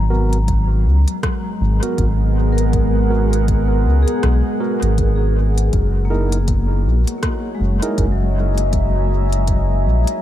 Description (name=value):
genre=ambient dub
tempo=80 BPM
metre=4/4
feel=swing 59% on 16ths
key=G# minor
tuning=A4 = 440 Hz
part: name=deep dark ambient pad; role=sustained chords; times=0.0-10.2 s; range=G#3 to A#5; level=-23 LUFS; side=equal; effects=chorus, built-in reverb
part: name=vibraphone with medium mallets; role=arpeggios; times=0.0-10.2 s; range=F#3 to A#5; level=-26 LUFS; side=left 2 dB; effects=dub echo
part: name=round analog bass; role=bass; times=0.0-10.1 s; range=F#1 to C#2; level=-16 LUFS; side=equal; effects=none
part: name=bright tine electric piano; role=stabs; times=0.1-8.0 s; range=B3 to A#4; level=-28 LUFS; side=right 4 dB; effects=low-pass filter, dub echo
part: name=organic electronic drum kit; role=drums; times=0.3-10.2 s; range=hi-hat, rim click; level=-30 LUFS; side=equal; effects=dub echo
part: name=electronic kick drum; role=drums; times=0.5-9.7 s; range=none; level=-21 LUFS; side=equal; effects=none
room=digital ambience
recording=none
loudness=-15 LUFS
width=side -12 dB against mid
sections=0.0-10.2 A section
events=filter sweep on tine electric piano 0.0-10.2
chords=0.0 G#m9; 5.7 F#13